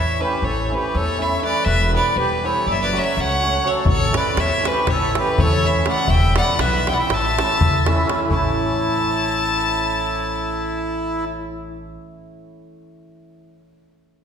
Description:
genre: balkan folk, Balkan wedding band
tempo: 243 BPM (eighths)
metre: 9/8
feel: straight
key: A mixolydian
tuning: A4 = 439 Hz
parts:
  - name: bright fiddle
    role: melody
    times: 0.0-11.3 s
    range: B4 to A5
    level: -22 LUFS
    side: left 2 dB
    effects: none
  - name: accordion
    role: second line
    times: 0.0-11.2 s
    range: E4 to E5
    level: -25 LUFS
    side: equal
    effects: none
  - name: hammered dulcimer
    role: accompaniment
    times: 0.0-13.4 s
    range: E3 to F#4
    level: -24 LUFS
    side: right 2 dB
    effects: none
  - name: upright bass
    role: bass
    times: 0.0-12.0 s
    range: E1 to E2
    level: -24 LUFS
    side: equal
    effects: none
  - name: davul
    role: percussion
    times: 3.9-8.6 s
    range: none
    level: -22 LUFS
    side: equal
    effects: none
room: wet concert hall reverb, RT60 1.9 s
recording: recorded in a church or concert hall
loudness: -17 LUFS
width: side -7 dB against mid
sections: 0.0-8.3 A section; 8.3-10.5 B section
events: none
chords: 0.0 A; 1.6 Em; 2.6 F#m; 3.9 A; 6.1 Em; 7.1 A

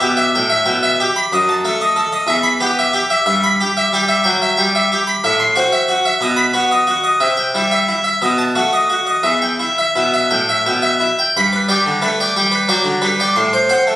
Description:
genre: classical, baroque-style suite movement for harpsichord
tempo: 60 BPM (dotted quarters)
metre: 6/8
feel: rubato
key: E minor from 3.3 s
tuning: A4 = 440 Hz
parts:
  - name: harpsichord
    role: solo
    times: 0.0-14.0 s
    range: E2 to C6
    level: -13 LUFS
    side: equal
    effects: none
room: wet large studio reverb, RT60 0.8 s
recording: recorded on a phone in the room, studio reverb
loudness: -13 LUFS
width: side -14 dB against mid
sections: 0.0-11.3 A section; 11.3-14.0 A section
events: none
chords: 0.0 Em; 1.3 D#dim/F#; 2.3 Em; 3.3 Em/G; 5.2 F#m7b5/A; 6.2 B; 7.2 C; 8.2 B7; 9.3 Em; 11.3 G; 13.4 F#dim/A

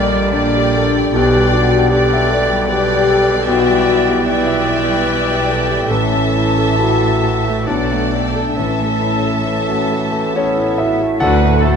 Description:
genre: classical, romantic movement for piano and orchestra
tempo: 64-78 BPM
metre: 3/4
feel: rubato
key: unclear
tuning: A4 = 439 Hz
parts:
  - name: clear concert grand piano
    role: melody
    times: 0.0-11.8 s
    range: A1 to F#5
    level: -18 LUFS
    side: left 1 dB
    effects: none
  - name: dark studio violin section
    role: melody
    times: 0.0-11.8 s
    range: F#4 to A5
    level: -30 LUFS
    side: left 3 dB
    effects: none
  - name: clear oboe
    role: second line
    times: 0.0-11.8 s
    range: A4 to E5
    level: -26 LUFS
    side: right 2 dB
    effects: none
  - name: large flute ensemble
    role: second line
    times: 0.0-11.8 s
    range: C#5 to A5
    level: -25 LUFS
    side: left 3 dB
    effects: none
  - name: rich studio violin section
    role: second line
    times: 0.0-11.8 s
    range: A3 to E5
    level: -25 LUFS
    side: left 3 dB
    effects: none
  - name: warm clarinet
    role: second line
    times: 0.0-11.8 s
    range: D4 to B4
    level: -27 LUFS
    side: left 3 dB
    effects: none
  - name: rich studio viola section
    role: accompaniment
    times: 0.0-11.8 s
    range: A4 to D5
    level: -24 LUFS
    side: right 2 dB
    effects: none
  - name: warm bassoon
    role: accompaniment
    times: 0.0-11.8 s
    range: D3 to B3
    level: -26 LUFS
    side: right 3 dB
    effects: none
  - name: mellow French horn section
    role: sustained chords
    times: 0.0-11.8 s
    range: G3 to A4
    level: -19 LUFS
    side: left 4 dB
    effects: none
  - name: bright studio double bass section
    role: bass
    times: 0.0-11.8 s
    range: A1 to D2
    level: -24 LUFS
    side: right 4 dB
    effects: none
  - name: warm studio cello section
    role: bass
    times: 0.0-11.8 s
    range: D2 to B2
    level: -24 LUFS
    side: right 6 dB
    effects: none
  - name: dark trombone section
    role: sustained chords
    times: 11.2-11.8 s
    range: D3 to A3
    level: -27 LUFS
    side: right 5 dB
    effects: none
  - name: mellow tuba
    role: bass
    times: 11.2-11.8 s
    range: D2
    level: -24 LUFS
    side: right 5 dB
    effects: none
  - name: timpani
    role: percussion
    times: 11.2-11.8 s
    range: D3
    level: -25 LUFS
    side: left 4 dB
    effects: none
room: moderate scoring stage reverb, RT60 1.9 s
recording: close, detailed microphones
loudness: -13 LUFS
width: side -6 dB against mid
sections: 0.0-11.2 A section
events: none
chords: 0.0 Gm/Bb; 1.1 Em7/B; 5.9 A; 7.7 Bm7; 8.6 A; 11.2 D

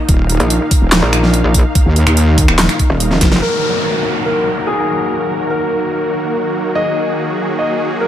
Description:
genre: heavy wobble dubstep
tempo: 144 BPM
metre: 4/4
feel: half-time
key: Eb minor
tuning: A4 = 439 Hz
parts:
  - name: supersaw chords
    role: sustained chords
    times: 0.0-8.1 s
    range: Bb2 to F5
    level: -21 LUFS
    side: equal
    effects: sidechain pumping, low-pass filter
  - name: warbly tape-like pad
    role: texture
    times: 0.0-8.1 s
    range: Eb4 to Bb5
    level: -22 LUFS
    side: left 1 dB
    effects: chorus, built-in reverb, sidechain pumping
  - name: wobble bass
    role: bass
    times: 0.1-2.7 s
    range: Eb1 to Eb2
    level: -12 LUFS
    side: equal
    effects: chorus, overdrive
  - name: dubstep drum kit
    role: drums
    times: 0.1-3.4 s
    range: finger snaps, handclaps, hi-hat, snare drum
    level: -15 LUFS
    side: equal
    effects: overdrive
  - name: electronic kick drum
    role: drums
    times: 0.1-3.3 s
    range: none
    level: -13 LUFS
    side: equal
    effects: overdrive
  - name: metallic wobble bass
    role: bass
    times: 0.4-3.4 s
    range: Eb1 to Bb1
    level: -14 LUFS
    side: equal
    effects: chorus, overdrive
  - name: dark concert grand piano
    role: melody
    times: 3.4-8.1 s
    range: Ab4 to Eb5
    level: -19 LUFS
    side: left 1 dB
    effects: dub echo
  - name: downlifter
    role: sound effects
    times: 3.4-6.8 s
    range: none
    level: -22 LUFS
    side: left 1 dB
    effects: none
room: light reverb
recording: none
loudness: -12 LUFS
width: side -11 dB against mid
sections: 0.0-3.4 A section; 3.4-8.1 B section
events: drop 0.0-3.4; drum fill 3.2; filter sweep on supersaw synth 3.4-8.1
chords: 0.0 Eb5; 3.4 Ebm

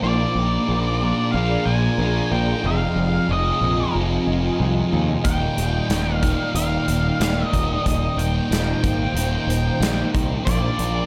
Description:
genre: rock, shoegaze and dream pop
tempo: 92 BPM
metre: 4/4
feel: straight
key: Eb major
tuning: A4 = 440 Hz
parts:
  - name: octave-fuzz lead guitar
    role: melody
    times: 0.0-11.1 s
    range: D5 to Ab5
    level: -29 LUFS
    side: equal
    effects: distortion, slapback echo
  - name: ethereal airy pad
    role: sustained chords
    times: 0.0-11.1 s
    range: Eb4 to Bb5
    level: -32 LUFS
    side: equal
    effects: ensemble chorus, built-in reverb
  - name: fingerpicked twelve-string acoustic guitar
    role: arpeggios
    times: 0.0-11.1 s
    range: Eb2 to F4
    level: -34 LUFS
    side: equal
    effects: none
  - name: electric guitar through a small old amp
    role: riff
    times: 0.0-11.1 s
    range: Eb2 to F4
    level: -36 LUFS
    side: equal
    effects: none
  - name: thick fuzz guitar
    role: riff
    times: 0.0-11.1 s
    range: Eb2 to Bb3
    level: -26 LUFS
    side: equal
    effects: distortion, ensemble chorus
  - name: growling fingered electric bass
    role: bass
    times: 0.0-11.0 s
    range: Eb1 to Eb2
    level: -26 LUFS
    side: equal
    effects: overdrive
  - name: big rock drum kit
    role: drums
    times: 5.2-10.9 s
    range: hi-hat, kick drum, snare drum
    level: -27 LUFS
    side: equal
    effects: none
room: small room ambience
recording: none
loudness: -21 LUFS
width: mono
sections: 0.0-11.1 A section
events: none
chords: 0.0 Bb7; 2.6 Fm7; 5.2 Ebmaj7; 10.5 Bb7

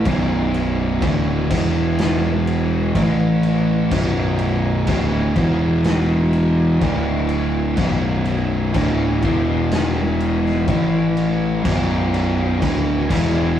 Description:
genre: stoner and doom metal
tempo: 62 BPM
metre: 4/4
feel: straight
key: B minor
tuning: A4 = 440 Hz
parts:
  - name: tonewheel organ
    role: sustained chords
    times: 0.0-13.6 s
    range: D3 to C#5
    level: -31 LUFS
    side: equal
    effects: none
  - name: fuzz guitar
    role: riff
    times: 0.0-13.6 s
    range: B1 to A3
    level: -18 LUFS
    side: equal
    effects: distortion
  - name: fuzz picked electric bass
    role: bass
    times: 0.1-13.6 s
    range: B0 to A1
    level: -24 LUFS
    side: left 1 dB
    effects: overdrive
  - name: raw garage drum kit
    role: drums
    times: 0.1-13.3 s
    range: crash cymbal, kick drum, snare drum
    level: -24 LUFS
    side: left 1 dB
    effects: none
room: moderate studio reverb, RT60 0.5 s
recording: rough rehearsal-room recording, tube saturation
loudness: -16 LUFS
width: side -10 dB against mid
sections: 0.0-13.6 A section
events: none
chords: 0.1 Bm; 1.5 E5; 3.0 A5; 3.9 Bm; 5.4 E5; 6.8 D5; 7.8 Bm; 9.2 E5; 10.7 A5; 11.7 Bm

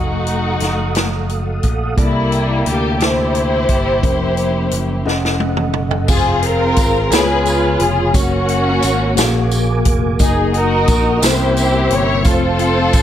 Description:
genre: slow gospel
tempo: 58 BPM (dotted quarters)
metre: 6/8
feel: straight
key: unclear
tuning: A4 = 439 Hz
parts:
  - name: warm studio string section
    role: melody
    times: 0.0-13.0 s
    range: G3 to Db5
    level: -17 LUFS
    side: left 2 dB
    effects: none
  - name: mellow tine electric piano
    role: accompaniment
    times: 0.0-13.0 s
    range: Bb2 to Gb5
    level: -21 LUFS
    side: left 2 dB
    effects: medium stereo tremolo
  - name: mellow tonewheel organ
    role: sustained chords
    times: 0.0-13.0 s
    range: Bb3 to Eb6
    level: -24 LUFS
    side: right 4 dB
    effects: slow rotary speaker, chorus vibrato
  - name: modern bright picked electric bass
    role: bass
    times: 0.0-13.0 s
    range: F1 to D2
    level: -20 LUFS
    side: equal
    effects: none
  - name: swinging big-band drum kit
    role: drums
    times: 0.3-13.0 s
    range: crash cymbal, hi-hat, kick drum, snare drum, toms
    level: -18 LUFS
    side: equal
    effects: none
  - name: tambourine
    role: percussion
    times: 6.1-13.0 s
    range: none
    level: -26 LUFS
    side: right 6 dB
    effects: none
room: light reverb, studio reverb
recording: none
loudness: -13 LUFS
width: side -10 dB against mid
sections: 0.0-6.1 A section; 6.1-13.0 B section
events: drum fill 5.1-6.1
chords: 0.0 F7b9; 2.0 C13; 4.0 Bbm/F; 5.1 F7b9b13; 6.1 Fm; 7.1 Db7; 8.1 Gb; 9.2 Bb7b13; 10.2 Ebm/Gb; 11.2 C7b9; 12.3 F

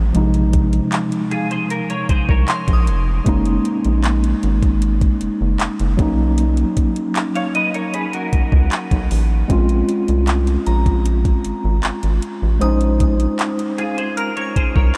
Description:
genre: contemporary R&B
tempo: 77 BPM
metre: 4/4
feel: straight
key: Bb minor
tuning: A4 = 440 Hz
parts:
  - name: mellow tine electric piano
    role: accompaniment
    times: 0.0-15.0 s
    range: C3 to C5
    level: -23 LUFS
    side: equal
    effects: none
  - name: rubbery square bass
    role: bass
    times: 0.0-14.9 s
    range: F1 to C#2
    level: -20 LUFS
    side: equal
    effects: none
  - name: smooth R&B drum kit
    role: drums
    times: 0.1-15.0 s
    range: handclaps, hi-hat, kick drum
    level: -22 LUFS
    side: equal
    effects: none
  - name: clean electric guitar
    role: arpeggios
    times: 1.3-15.0 s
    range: F4 to F5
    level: -27 LUFS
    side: equal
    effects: ensemble chorus, delay
  - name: glassy synth bell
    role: texture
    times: 2.5-3.8, 10.7-15.0 s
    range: Bb5 to Ab6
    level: -33 LUFS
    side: equal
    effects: chorus, delay
room: moderate huge ambient reverb, RT60 7.9 s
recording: dreamy mix soaked in reverb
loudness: -18 LUFS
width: mono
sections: 0.0-15.0 A section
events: none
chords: 0.0 Bbm9; 3.3 Gb69; 6.0 Bmaj9; 9.5 Bbm9

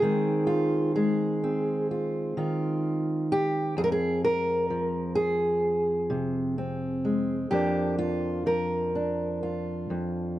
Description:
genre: folk, solo fingerstyle acoustic guitar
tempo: 64 BPM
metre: 4/4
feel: rubato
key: F dorian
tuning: A4 = 440 Hz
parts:
  - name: fingerpicked steel-string acoustic guitar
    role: solo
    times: 0.0-10.4 s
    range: F2 to Bb4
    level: -25 LUFS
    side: equal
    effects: none
room: light reverb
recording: dark, warm production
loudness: -25 LUFS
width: side -14 dB against mid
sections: 0.0-10.4 A section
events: none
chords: 0.0 Ab6/Eb; 3.8 Fm; 7.5 Bb/F

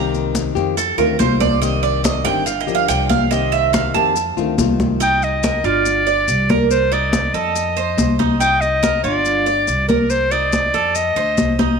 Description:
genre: latin, Cuban son and guajira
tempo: 141 BPM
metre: 4/4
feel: straight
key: unclear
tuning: A4 = 441 Hz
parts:
  - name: flamenco guitar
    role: accompaniment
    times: 0.0-5.0 s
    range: C3 to G4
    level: -22 LUFS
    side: left 10 dB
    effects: none
  - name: Cuban tres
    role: arpeggios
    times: 0.0-11.8 s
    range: Eb4 to A5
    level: -20 LUFS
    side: right 9 dB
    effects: none
  - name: upright bass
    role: bass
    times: 0.0-11.8 s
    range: G1 to F2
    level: -23 LUFS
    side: equal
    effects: none
  - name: congas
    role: percussion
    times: 0.1-11.8 s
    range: none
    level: -20 LUFS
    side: left 2 dB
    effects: none
  - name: maracas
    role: percussion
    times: 0.1-11.8 s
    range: none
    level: -30 LUFS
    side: left 15 dB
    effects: none
  - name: clear clarinet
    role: melody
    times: 5.0-11.6 s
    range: Bb4 to G5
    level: -18 LUFS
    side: left 1 dB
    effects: none
room: moderate echo chamber reverb, RT60 1.9 s, small room ambience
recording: 1960s-style stereo with parts hard left and right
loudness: -15 LUFS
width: side -5 dB against mid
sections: 0.0-5.0 A section; 5.0-11.8 B section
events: Cuban tres solo 0.0-5.0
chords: 0.0 Cm7; 0.8 F7; 1.6 Cm7; 2.5 Gm7; 3.3 Cm7; 4.2 F7; 5.0 Cm7; 5.9 Gm7; 6.7 Cm7; 7.6 F7; 8.4 Cm7; 9.3 Gm7; 10.1 Cm7; 11.0 F7

